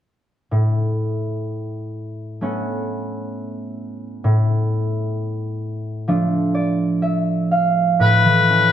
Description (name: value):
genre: celtic folk, Celtic slow air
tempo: 61-66 BPM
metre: 4/4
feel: rubato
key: unclear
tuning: A4 = 436 Hz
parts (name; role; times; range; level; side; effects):
- concert harp; accompaniment; 0.5-8.7 s; A2 to F5; -19 LUFS; right 1 dB; none
- loud bright bagpipes; melody; 8.0-8.7 s; B4; -14 LUFS; left 5 dB; none
room: moderate scoring stage reverb, RT60 1.5 s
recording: none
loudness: -18 LUFS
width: side -10 dB against mid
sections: 0.5-8.0 A section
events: harp fill 6.1-8.0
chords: 0.5 Aadd9; 4.2 Dm/A; 8.0 Aadd9